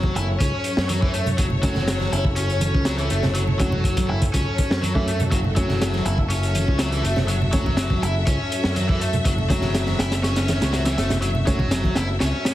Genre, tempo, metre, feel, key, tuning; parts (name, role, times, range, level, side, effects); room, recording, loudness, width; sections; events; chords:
breakbeat, breaks; 122 BPM; 4/4; straight; F# minor; A4 = 440 Hz
clear studio string section; sustained chords; 0.0-12.5 s; F#3 to E5; -29 LUFS; left 2 dB; sidechain pumping
cranked stack guitar; riff; 0.0-12.5 s; E3 to E4; -27 LUFS; equal; overdrive, tube saturation, vintage 12-bit sampler grit, digital delay
fingered electric bass; bass; 0.0-12.3 s; F#1 to F#2; -24 LUFS; equal; tube saturation
crunchy breakbeat drum kit; drums; 0.0-12.5 s; hi-hat, kick drum, snare drum; -23 LUFS; equal
congas; percussion; 0.0-11.9 s; -29 LUFS; right 2 dB
dark concert grand piano; stabs; 1.6-11.6 s; A3 to E5; -30 LUFS; right 1 dB; low-pass filter, digital delay
small room reverb; heavily compressed radio sound, multiband compression; -19 LUFS; side -14 dB against mid
0.0-12.5 A section
filter sweep on grand piano 0.0-12.5; kick drops out 12.2-12.5
0.0 F#m